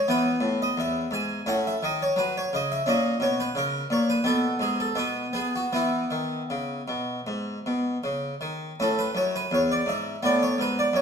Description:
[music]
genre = classical, baroque-style suite movement for harpsichord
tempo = 77-88 BPM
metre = 4/4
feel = rubato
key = E major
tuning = A4 = 440 Hz
[part]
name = harpsichord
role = solo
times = 0.0-11.0 s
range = E2 to G#5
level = -23 LUFS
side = equal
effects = none
[sound]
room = wet recital hall reverb, RT60 1.5 s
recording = minimal, uncompressed stereo recording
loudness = -24 LUFS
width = side -6 dB against mid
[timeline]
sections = 0.0-8.8 A section; 8.8-11.0 A section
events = none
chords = 0.1 E; 1.5 F#m/A; 2.9 A#madd11; 4.2 G#m; 5.0 N.C.; 5.7 E5; 8.8 A; 10.2 B5

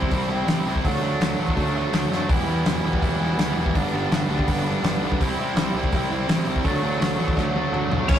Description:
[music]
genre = punk rock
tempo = 165 BPM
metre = 4/4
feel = straight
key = unclear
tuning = A4 = 437 Hz
[part]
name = biting overdriven guitar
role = riff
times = 0.0-8.2 s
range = G2 to E4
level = -26 LUFS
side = right 4 dB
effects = none
[part]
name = sludgy distorted guitar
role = riff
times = 0.0-8.2 s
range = G2 to E4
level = -28 LUFS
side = left 5 dB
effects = overdrive
[part]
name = fuzz picked electric bass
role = bass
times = 0.0-8.2 s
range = E1 to C3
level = -27 LUFS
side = equal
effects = overdrive
[part]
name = loose indie drum kit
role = drums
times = 0.0-8.2 s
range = crash cymbal, hi-hat, kick drum, snare drum, toms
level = -24 LUFS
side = left 1 dB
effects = none
[part]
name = lead guitar through a small cranked amp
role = melody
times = 8.1-8.2 s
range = C#4 to C#5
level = -23 LUFS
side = left 1 dB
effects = overdrive
[sound]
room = light reverb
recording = rough rehearsal-room recording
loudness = -20 LUFS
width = side -10 dB against mid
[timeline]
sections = 0.0-8.1 A section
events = drum fill 2.1, 7.4-8.1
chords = 0.0 C; 0.8 D; 2.3 Em; 3.8 G; 5.2 C; 6.7 D

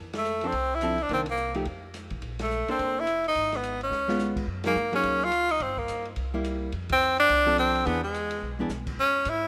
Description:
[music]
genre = jazz, small-group swing and bop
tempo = 213 BPM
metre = 4/4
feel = swing 60% on 8ths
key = unclear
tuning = A4 = 440 Hz
[part]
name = upright bass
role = bass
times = 0.0-9.5 s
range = F1 to G#2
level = -39 LUFS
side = equal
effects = none
[part]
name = open jazz drum kit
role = drums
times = 0.1-9.3 s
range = crash cymbal, hi-hat, kick drum, ride cymbal, snare drum, toms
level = -42 LUFS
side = equal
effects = none
[part]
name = bright tenor saxophone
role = melody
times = 0.2-9.5 s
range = G#3 to F4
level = -27 LUFS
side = equal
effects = none
[part]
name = archtop guitar, miked and amplified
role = accompaniment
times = 0.4-8.7 s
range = Eb3 to C5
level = -34 LUFS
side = equal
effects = none
[sound]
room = moderate lush hall reverb, RT60 2.4 s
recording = rough home demo mix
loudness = -27 LUFS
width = mono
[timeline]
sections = 0.0-9.0 A section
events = band accent 0.1, 2.4, 4.6, 6.9; drum fill 3.9, 8.4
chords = 0.0 F6; 1.1 Cm9; 1.7 N.C.; 2.2 Bbmaj9; 3.4 Abm; 3.9 Db7; 4.5 Gb69; 5.6 Gm; 6.2 C7; 6.7 F6; 7.9 E7

